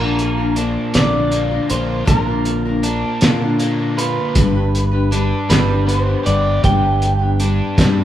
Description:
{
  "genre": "folk rock and heartland rock",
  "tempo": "53 BPM (dotted quarters)",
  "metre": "6/8",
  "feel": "straight",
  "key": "unclear",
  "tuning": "A4 = 440 Hz",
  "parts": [
    { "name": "electric guitar through a small old amp", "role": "melody", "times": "0.0-7.7 s", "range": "Bb4 to G5", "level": "-22 LUFS", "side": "right 1 dB", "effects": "spring reverb" },
    { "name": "picked steel-string acoustic guitar", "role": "accompaniment", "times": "0.0-8.0 s", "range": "Bb2 to B4", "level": "-22 LUFS", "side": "left 4 dB", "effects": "none" },
    { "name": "crunchy overdriven guitar", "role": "riff", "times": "0.0-8.0 s", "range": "G2 to G4", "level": "-22 LUFS", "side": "right 1 dB", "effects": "spring reverb" },
    { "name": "fingered electric bass", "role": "bass", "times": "0.0-8.0 s", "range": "G1 to Bb2", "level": "-20 LUFS", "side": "right 1 dB", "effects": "none" },
    { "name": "cloth-damped thuddy drum kit", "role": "drums", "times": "0.2-8.0 s", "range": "hi-hat, kick drum, snare drum", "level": "-18 LUFS", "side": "right 1 dB", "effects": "none" }
  ],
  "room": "light reverb",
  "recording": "band playing live in one room",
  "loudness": "-14 LUFS",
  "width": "side -12 dB against mid",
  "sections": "0.0-8.0 A section",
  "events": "none",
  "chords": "0.0 Bb; 4.4 G"
}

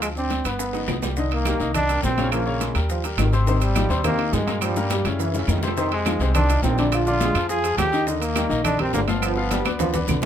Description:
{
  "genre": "latin, salsa",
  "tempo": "209 BPM",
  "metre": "4/4",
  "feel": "straight",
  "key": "C minor",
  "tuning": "A4 = 439 Hz",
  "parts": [
    { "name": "bright trombone", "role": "melody", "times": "0.0-10.0 s", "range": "G3 to Ab4", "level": "-25 LUFS", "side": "right 1 dB", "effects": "none" },
    { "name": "bright upright piano", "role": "accompaniment", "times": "0.0-10.3 s", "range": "Bb2 to F5", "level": "-27 LUFS", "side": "left 3 dB", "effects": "none" },
    { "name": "upright bass", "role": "bass", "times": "0.0-10.3 s", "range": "G1 to G2", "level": "-24 LUFS", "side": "equal", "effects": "none" },
    { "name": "bongos", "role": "percussion", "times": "0.0-10.3 s", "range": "none", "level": "-34 LUFS", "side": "left 4 dB", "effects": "none" },
    { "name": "claves", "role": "percussion", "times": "0.0-10.2 s", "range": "none", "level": "-35 LUFS", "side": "right 6 dB", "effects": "none" },
    { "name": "congas", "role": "percussion", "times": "0.0-10.3 s", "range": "none", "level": "-30 LUFS", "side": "left 2 dB", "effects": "none" },
    { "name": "guiro", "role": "percussion", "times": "0.0-10.3 s", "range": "none", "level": "-36 LUFS", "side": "left 6 dB", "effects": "none" },
    { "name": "maracas", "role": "percussion", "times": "0.0-10.3 s", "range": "none", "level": "-38 LUFS", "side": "right 6 dB", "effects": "none" },
    { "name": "timbales", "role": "percussion", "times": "0.0-10.3 s", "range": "none", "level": "-31 LUFS", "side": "right 7 dB", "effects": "none" },
    { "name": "warm trombone section", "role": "second line", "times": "1.2-10.2 s", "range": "D3 to Ab3", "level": "-29 LUFS", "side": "right 2 dB", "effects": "none" }
  ],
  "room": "light reverb",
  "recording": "minimal, uncompressed stereo recording",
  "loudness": "-19 LUFS",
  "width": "side -9 dB against mid",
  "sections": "0.0-1.2 A section; 1.2-10.3 B section",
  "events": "drum fill 0.6-1.2, 4.6-5.8, 9.7-10.3",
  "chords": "0.0 G7; 0.6 Gaug; 1.2 Cm9; 2.3 Bbm7; 2.9 Abmaj9; 4.6 Gm7b5; 5.2 F#5; 5.8 Fm7; 6.9 Bb6; 8.1 Ebmaj9; 9.2 G7"
}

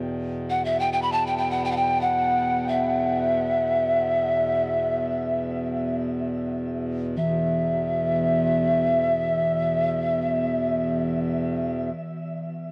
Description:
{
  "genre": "world meditative, free-time meditation music",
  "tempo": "free time",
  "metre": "none",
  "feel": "none",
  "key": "E minor",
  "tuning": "A4 = 440 Hz",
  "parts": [
    { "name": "hand-pumped harmonium", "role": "drone", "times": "0.0-11.9 s", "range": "E2 to B2", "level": "-30 LUFS", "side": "equal", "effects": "none" },
    { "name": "breathy pan flute", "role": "melody", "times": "0.5-11.9 s", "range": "E5 to B5", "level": "-26 LUFS", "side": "equal", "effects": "shimmer reverb" },
    { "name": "quartz singing bowl", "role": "texture", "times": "7.2-11.9 s", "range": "E3", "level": "-32 LUFS", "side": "equal", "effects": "none" }
  ],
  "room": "wet huge ambient reverb, RT60 7.8 s",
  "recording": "worn, warbling old tape, cassette tape, warbly pitch drift",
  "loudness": "-24 LUFS",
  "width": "mono",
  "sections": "0.0-7.2 A section; 7.2-11.3 B section",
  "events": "none",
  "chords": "none"
}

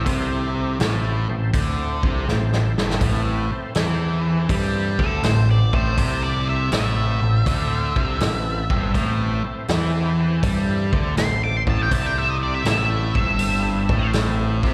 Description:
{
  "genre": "blues rock power trio and southern rock",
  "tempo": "81 BPM",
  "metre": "4/4",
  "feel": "swing 67% on 8ths",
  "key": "A minor",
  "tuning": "A4 = 440 Hz",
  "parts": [
    { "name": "octave-fuzz lead guitar", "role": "melody", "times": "0.0, 5.0-14.1 s", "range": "A4 to D6", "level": "-28 LUFS", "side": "equal", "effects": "distortion, slapback echo, analog delay" },
    { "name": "overdriven tonewheel organ", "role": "sustained chords", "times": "0.0-14.7 s", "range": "C4 to D5", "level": "-34 LUFS", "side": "equal", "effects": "chorus vibrato, slow rotary speaker" },
    { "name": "overdriven electric guitar", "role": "riff", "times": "0.0-14.7 s", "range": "G2 to G3", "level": "-26 LUFS", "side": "equal", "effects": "spring reverb, slapback echo" },
    { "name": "growling picked electric bass", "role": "bass", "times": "0.0-14.7 s", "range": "G1 to G2", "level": "-26 LUFS", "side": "equal", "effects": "overdrive" },
    { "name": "vintage drum kit", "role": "drums", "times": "0.1-14.7 s", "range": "hi-hat, kick drum, snare drum", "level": "-26 LUFS", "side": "equal", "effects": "none" }
  ],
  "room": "light reverb",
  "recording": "live gig heard through the venue's PA, recital hall reverb",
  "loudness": "-21 LUFS",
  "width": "mono",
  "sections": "0.0-14.7 A section",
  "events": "drum fill 2.3-3.0",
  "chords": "0.0 Am"
}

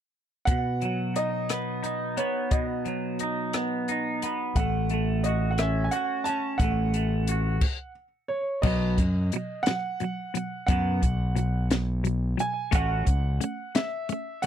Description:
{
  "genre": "indie rock",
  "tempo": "59 BPM (dotted quarters)",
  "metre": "6/8",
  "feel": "straight",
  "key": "unclear",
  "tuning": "A4 = 437 Hz",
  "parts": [
    { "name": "clear upright piano", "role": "melody", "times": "0.5-14.5 s", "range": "C#5 to A5", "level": "-31 LUFS", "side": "right 2 dB", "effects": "slapback echo" },
    { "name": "twangy electric guitar", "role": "riff", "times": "0.5-14.5 s", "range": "B2 to F#4", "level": "-29 LUFS", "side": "equal", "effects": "double-tracked left and right" },
    { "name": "compact cocktail drum kit", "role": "drums", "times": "0.5-14.5 s", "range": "crash cymbal, hi-hat, kick drum, rim click, snare drum", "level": "-27 LUFS", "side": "left 1 dB", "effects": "none" },
    { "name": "growling fingered electric bass", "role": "bass", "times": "4.6-13.4 s", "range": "A1 to F#2", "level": "-26 LUFS", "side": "equal", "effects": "overdrive" }
  ],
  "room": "little or no reverb",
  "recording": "dry, close 1970s-style studio recording",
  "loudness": "-24 LUFS",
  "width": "side -10 dB against mid",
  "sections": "0.5-8.6 A section; 8.6-14.5 B section",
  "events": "stop 7.6-8.6",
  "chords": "0.5 B; 4.6 F#m/A; 8.6 B; 12.7 F#m/A"
}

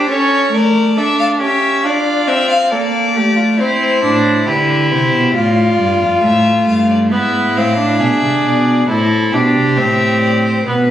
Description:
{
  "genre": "classical, baroque-style fugue for string quartet",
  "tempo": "68 BPM",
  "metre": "4/4",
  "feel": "straight",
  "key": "unclear",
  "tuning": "A4 = 439 Hz",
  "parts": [
    { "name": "rich violin", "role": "melody", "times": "0.0-10.9 s", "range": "B4 to F5", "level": "-20 LUFS", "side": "left 5 dB", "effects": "none" },
    { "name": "rich violin", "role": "second line", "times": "0.0-10.9 s", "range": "E4 to B4", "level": "-18 LUFS", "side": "left 2 dB", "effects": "none" },
    { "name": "warm viola", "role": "accompaniment", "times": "0.0-10.8 s", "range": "A3 to F4", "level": "-15 LUFS", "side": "right 1 dB", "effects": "none" },
    { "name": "rich cello", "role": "bass", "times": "4.0-10.9 s", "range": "F2 to D3", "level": "-16 LUFS", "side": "right 1 dB", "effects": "none" }
  ],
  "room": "moderate recital hall reverb, RT60 1.4 s",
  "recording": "recorded on a phone in the room, club reverb, compression",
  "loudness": "-11 LUFS",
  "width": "side -11 dB against mid",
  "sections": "0.0-10.7 A section",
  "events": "none",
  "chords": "0.1 A; 1.8 Dm; 3.6 Am; 5.4 Fmaj13; 7.1 E/G#; 8.9 Am"
}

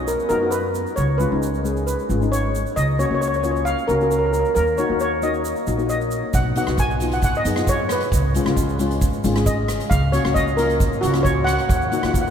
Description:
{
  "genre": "calypso",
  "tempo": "134 BPM",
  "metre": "4/4",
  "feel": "straight",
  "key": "F# major",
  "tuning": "A4 = 440 Hz",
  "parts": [
    { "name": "steel pan", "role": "melody", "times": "0.0-12.3 s", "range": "F#4 to G#5", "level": "-22 LUFS", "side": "equal", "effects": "none" },
    { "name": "steel pan", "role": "accompaniment", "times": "0.0-12.2 s", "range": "G#3 to G#4", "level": "-24 LUFS", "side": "left 3 dB", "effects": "none" },
    { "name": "upright bass", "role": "bass", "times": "0.0-12.3 s", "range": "G#1 to F#2", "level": "-24 LUFS", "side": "right 1 dB", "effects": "none" },
    { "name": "egg shaker", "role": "percussion", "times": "0.1-12.3 s", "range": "none", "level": "-36 LUFS", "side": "right 9 dB", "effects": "none" },
    { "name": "street-band drum kit", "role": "drums", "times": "6.3-12.2 s", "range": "hi-hat, kick drum, rim click", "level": "-24 LUFS", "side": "right 1 dB", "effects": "none" }
  ],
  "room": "wet cathedral reverb, RT60 5.6 s",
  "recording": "in a vast, echoing space",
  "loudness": "-18 LUFS",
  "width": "side -8 dB against mid",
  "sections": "0.0-12.3 A section",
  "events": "none",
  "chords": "0.0 B; 1.0 C#7(no3); 2.8 F#maj7/C#; 4.6 D#m; 6.3 B; 8.1 C#7; 9.9 F#maj7/C#; 11.7 D#m"
}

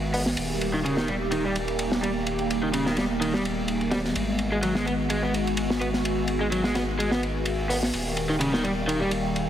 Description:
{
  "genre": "breakbeat, breaks",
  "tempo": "127 BPM",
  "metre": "4/4",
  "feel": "swing 54% on 16ths",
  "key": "G# minor",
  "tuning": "A4 = 438 Hz",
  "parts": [
    { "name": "phased analog pad", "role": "sustained chords", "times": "0.0-9.5 s", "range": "D#3 to G4", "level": "-28 LUFS", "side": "equal", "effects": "phaser, chorus, vintage 12-bit sampler grit" },
    { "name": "saturated sub bass", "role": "bass", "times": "0.0-9.5 s", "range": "D#1 to G#1", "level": "-33 LUFS", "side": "equal", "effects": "none" },
    { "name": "overdriven electric guitar", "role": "riff", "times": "0.1-9.1 s", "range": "C#3 to B3", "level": "-28 LUFS", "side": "equal", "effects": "tube saturation, low-pass filter, dub echo" },
    { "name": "crunchy breakbeat drum kit", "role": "drums", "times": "0.1-9.5 s", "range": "hi-hat, ride cymbal, snare drum", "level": "-29 LUFS", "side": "equal", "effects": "high-pass filter on kick, high-pass filter on cymbals, high-pass filter on hats, high-pass filter on snare, high-pass filter on room" }
  ],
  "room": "moderate plate reverb, RT60 1.8 s, small room ambience",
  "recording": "heavily compressed radio sound, multiband compression",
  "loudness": "-23 LUFS",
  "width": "side -10 dB against mid",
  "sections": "0.0-9.5 A section",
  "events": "none",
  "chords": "0.4 D#; 4.2 G#m7; 7.9 D#"
}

